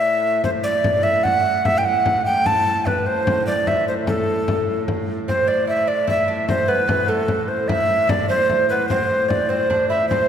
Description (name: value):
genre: medieval dance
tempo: 99 BPM (dotted quarters)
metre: 6/8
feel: straight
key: A dorian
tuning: A4 = 440 Hz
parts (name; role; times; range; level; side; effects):
- breathy tenor recorder; melody; 0.0-10.3 s; A4 to A5; -18 LUFS; equal; none
- warm hurdy-gurdy; drone; 0.0-10.3 s; A2; -28 LUFS; right 1 dB; none
- frame drum; percussion; 0.4-10.3 s; none; -25 LUFS; left 2 dB; none
- lute; second line; 5.3-10.3 s; A3 to E4; -23 LUFS; right 3 dB; none
room: wet concert hall reverb, RT60 2.5 s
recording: recorded in a church or concert hall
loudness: -17 LUFS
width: side -8 dB against mid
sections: 0.0-5.3 A section; 5.3-10.3 B section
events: none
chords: none